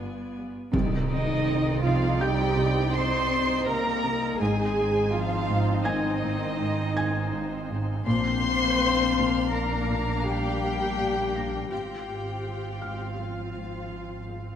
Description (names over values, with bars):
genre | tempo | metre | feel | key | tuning
cinematic, suspense film score | 82 BPM | 5/4 | straight | C minor | A4 = 439 Hz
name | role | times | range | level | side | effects
muted chamber violin section | melody | 0.0-14.6 s | C5 to F5 | -39 LUFS | equal | none
muted chamber violin section | second line | 0.0-14.6 s | F4 to C6 | -32 LUFS | left 2 dB | none
muted chamber viola section | accompaniment | 0.0-14.6 s | Bb3 to F4 | -34 LUFS | right 1 dB | none
muted chamber cello section | riff | 0.0-14.5 s | G2 to C4 | -32 LUFS | equal | none
muted chamber cello section | bass | 0.0-14.6 s | G2 to C5 | -30 LUFS | right 2 dB | none
muted symphonic double bass section | bass | 0.0-14.6 s | G1 to C2 | -31 LUFS | right 2 dB | none
felt-muted upright piano | texture | 0.0-14.6 s | G5 to Bb6 | -37 LUFS | equal | none
timpani | percussion | 0.7-1.8 s | C3 | -31 LUFS | right 1 dB | none
impact | sound effects | 0.7-4.4 s | none | -35 LUFS | equal | none
warm French horn section | sustained chords | 1.1-14.6 s | Eb3 to G4 | -31 LUFS | left 6 dB | none
room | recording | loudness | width
moderate scoring stage reverb, RT60 1.6 s | none | -24 LUFS | side -9 dB against mid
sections
0.7-14.6 A section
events
impact 0.7-4.4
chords
0.0 G7; 0.7 Cmadd9; 4.4 Ab; 8.1 Bb; 11.7 Fm/Ab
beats
0.00 | 0.73 1.47 2.20 2.93 3.66 | 4.39 5.13 5.86 6.59 7.32 | 8.05 8.78 9.52 10.25 10.98 | 11.71 12.44 13.17 13.91